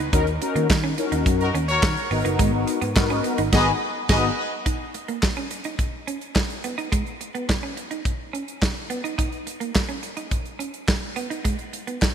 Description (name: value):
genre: early-eighties boogie funk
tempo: 106 BPM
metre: 4/4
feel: straight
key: G# minor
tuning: A4 = 440 Hz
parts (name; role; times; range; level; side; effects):
- clean electric guitar; riff; 0.0-12.0 s; G#3 to D#4; -30 LUFS; right 5 dB; wide subtle chorus
- vintage muted picked electric bass; bass; 0.0-4.3 s; F#1 to D#3; -25 LUFS; equal; none
- mellow synth brass; accompaniment; 0.1-4.3 s; B3 to A#4; -25 LUFS; left 4 dB; chorus, phaser
- modern studio drum kit; drums; 0.1-12.1 s; crash cymbal, handclaps, hi-hat, kick drum, snare drum; -24 LUFS; equal; none
- warm horn section; second line; 1.4-4.2 s; D#4 to D#5; -26 LUFS; left 2 dB; digital delay
room: moderate lush hall reverb, RT60 2.8 s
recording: bright 1980s-style digital production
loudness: -21 LUFS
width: side -8 dB against mid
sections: 0.0-4.7 A section; 4.7-12.1 B section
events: band accent 3.5-4.7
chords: 0.1 D#m7; 2.1 G#m7; 4.7 D#5; 6.6 G#m (rootless); 9.2 D#5; 11.2 G#m